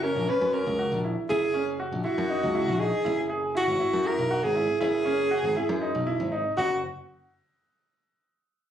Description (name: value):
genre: progressive instrumental, band music in an uneven meter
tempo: 239 BPM (eighths)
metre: 7/8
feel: straight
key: unclear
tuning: A4 = 443 Hz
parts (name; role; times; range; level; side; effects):
- breathy soprano saxophone; melody; 0.0-6.8 s; F#4 to B4; -26 LUFS; equal; none
- clear baby grand piano; arpeggios; 0.0-6.8 s; C#4 to G#4; -30 LUFS; right 2 dB; none
- modern bright picked electric bass; bass; 0.0-6.8 s; F#1 to F#2; -31 LUFS; left 1 dB; none
room: light reverb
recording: recorded on a phone in the room, club reverb, compression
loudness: -24 LUFS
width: side -10 dB against mid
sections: 0.0-6.6 A section; 6.6-8.3 B section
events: none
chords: 0.0 F#7; 3.1 E/F#; 6.6 N.C.